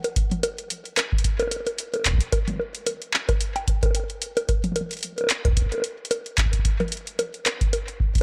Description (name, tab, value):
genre	IDM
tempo	111 BPM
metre	4/4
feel	swing 56% on 16ths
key	none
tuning	none
part	booming analog drum machine	drums	0.0-8.2 s	bongos, handclaps, hi-hat, toms	-28 LUFS	equal	small room ambience, tape echo
part	electronic kick drum	drums	0.2-8.2 s	none	-25 LUFS	equal	small room ambience
room	light reverb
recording	echo-heavy mix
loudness	-25 LUFS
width	mono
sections	0.0-8.2 A section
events	none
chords	none